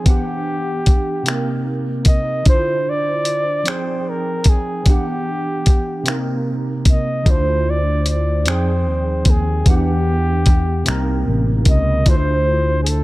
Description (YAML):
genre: slow six-eight R&B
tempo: 50 BPM (dotted quarters)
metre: 6/8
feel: straight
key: unclear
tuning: A4 = 440 Hz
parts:
  - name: breathy flugelhorn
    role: melody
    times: 0.0-13.0 s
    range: G4 to Eb5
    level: -23 LUFS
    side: equal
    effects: none
  - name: barky tine electric piano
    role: accompaniment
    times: 0.0-13.0 s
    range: C3 to G5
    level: -22 LUFS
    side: right 2 dB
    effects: overdrive, ensemble chorus
  - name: dusty soul sampler-style drum kit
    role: drums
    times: 0.1-13.0 s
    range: finger snaps, hi-hat, kick drum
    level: -14 LUFS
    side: equal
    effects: none
  - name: sustaining fretless electric bass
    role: bass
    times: 7.3-13.0 s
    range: A1 to F2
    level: -18 LUFS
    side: equal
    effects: ensemble chorus
room: little or no reverb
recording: none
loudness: -15 LUFS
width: side -18 dB against mid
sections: 0.0-13.0 A section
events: none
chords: 0.1 Em9; 1.3 Cm7; 2.5 Dm9; 3.7 Fm9; 4.9 Em9; 6.1 Cm7; 7.3 Dm9; 8.5 Fm9; 9.7 Em9; 10.9 Cm7; 12.1 Dm9